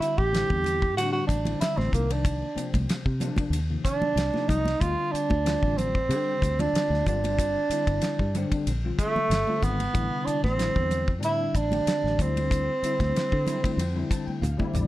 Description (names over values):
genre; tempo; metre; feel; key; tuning
electric jazz fusion; 94 BPM; 4/4; swing 53% on 16ths; D minor; A4 = 440 Hz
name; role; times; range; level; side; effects
breathy tenor saxophone; melody; 0.0-14.4 s; A3 to G4; -26 LUFS; right 2 dB; none
bell-like tine electric piano; accompaniment; 0.0-14.9 s; C3 to A5; -32 LUFS; left 4 dB; ensemble chorus
fingered electric bass; bass; 0.0-14.9 s; G1 to D3; -28 LUFS; equal; none
damped 70s drum kit; drums; 0.0-14.9 s; hi-hat, kick drum, ride cymbal, snare drum, toms; -29 LUFS; equal; none
congas; percussion; 0.6-14.9 s; none; -34 LUFS; right 2 dB; none
room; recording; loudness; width
moderate large studio reverb, RT60 0.9 s, studio reverb; dark, warm production; -23 LUFS; side -16 dB against mid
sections
0.0-14.9 A section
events
tine electric piano fill 13.8-14.9; drum fill 14.3-14.9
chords
0.0 Am7; 1.9 Cm9; 4.8 Dm7; 7.1 G7sus2; 9.9 Am7; 12.2 Dm9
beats
0.33 0.97 1.61 | 2.25 2.89 3.53 4.17 | 4.81 5.46 6.10 6.74 | 7.38 8.02 8.66 9.30 | 9.94 10.58 11.22 11.86 | 12.50 13.14 13.78 14.42